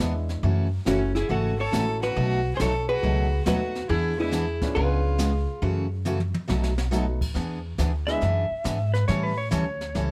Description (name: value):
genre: country, western swing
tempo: 139 BPM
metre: 4/4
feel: swing 68% on 8ths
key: E mixolydian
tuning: A4 = 442 Hz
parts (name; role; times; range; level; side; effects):
- clear upright piano; accompaniment; 0.0-8.2 s; E3 to G#4; -36 LUFS; equal; none
- picked steel-string acoustic guitar; accompaniment; 0.0-10.1 s; B2 to A4; -31 LUFS; equal; none
- upright bass; bass; 0.0-10.1 s; F#1 to A2; -28 LUFS; equal; none
- jazz brush drum kit; drums; 0.0-10.1 s; brushed snare drum, crash cymbal, hi-hat, kick drum, snare drum, toms; -36 LUFS; equal; none
- vintage hollow-body jazz guitar; melody; 0.9-6.0 s; C#4 to C#5; -30 LUFS; equal; none
- clear fiddle; second line; 0.9-5.6 s; C#4 to A4; -35 LUFS; equal; none
- clean lap steel guitar; second line; 8.1-10.1 s; B4 to E5; -31 LUFS; equal; none
room: light reverb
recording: none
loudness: -25 LUFS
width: mono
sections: 0.0-7.3 A section; 7.3-10.1 B section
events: drum fill 6.1-6.9; electric slide guitar solo 7.3-10.1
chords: 0.4 F#m7; 2.2 B7; 3.9 E7; 4.8 C#7b9; 5.6 F#m7; 6.5 B7; 7.3 E7; 9.1 A7